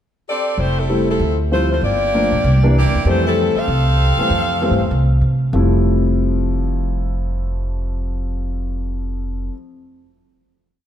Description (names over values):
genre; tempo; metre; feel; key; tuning
jazz, big band swing; 194 BPM; 4/4; swing 60% on 8ths; F major; A4 = 440 Hz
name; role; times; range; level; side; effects
clear saxophone section; melody; 0.3-5.2 s; F3 to F5; -19 LUFS; left 1 dB; none
upright bass; bass; 0.6-9.5 s; F1 to C3; -18 LUFS; right 1 dB; none
warm concert grand piano; accompaniment; 0.9-9.5 s; F2 to E4; -22 LUFS; left 2 dB; none
room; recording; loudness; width
moderate concert hall reverb, RT60 2.1 s; dark, warm production; -15 LUFS; side -10 dB against mid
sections
0.0-0.6 pickup bar; 0.6-5.5 A section; 5.5-8.0 final chord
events
none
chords
0.0 Csus2; 0.6 Fmaj9; 1.2 Dm11; 1.8 Gm7; 2.4 C9; 3.1 Fmaj9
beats
0.27 | 0.58 0.89 1.20 1.51 | 1.82 2.13 2.44 2.75 | 3.06 3.37 3.68 3.99 | 4.30 4.61 4.92 5.23 | 5.54 5.85 6.16 6.47 | 6.78 7.09 7.40 7.71